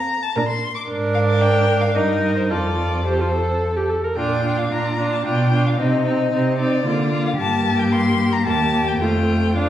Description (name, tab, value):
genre	quick classical-period movement for string quartet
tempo	111 BPM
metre	3/4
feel	straight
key	Bb major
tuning	A4 = 439 Hz
part	rich violin	melody	0.0-9.7 s	C5 to D6	-24 LUFS	left 5 dB	none
part	rich violin	second line	0.0-9.7 s	Eb4 to Bb4	-26 LUFS	equal	none
part	warm viola	accompaniment	0.0-9.7 s	A3 to Bb4	-22 LUFS	right 1 dB	none
part	rich cello	bass	0.4-9.7 s	Eb2 to D3	-22 LUFS	right 2 dB	none
room	wet recital hall reverb, RT60 1.4 s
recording	heard from further back in the room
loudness	-17 LUFS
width	side -11 dB against mid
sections	0.0-4.2 A section; 4.2-9.7 B section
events	none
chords	0.4 Bb; 0.9 Bb7/Ab; 2.0 Eb/G; 2.5 F; 4.2 Bb; 5.3 G7/B; 5.8 Cm; 6.9 Bb/D; 7.4 Gm; 8.5 Eb; 9.0 F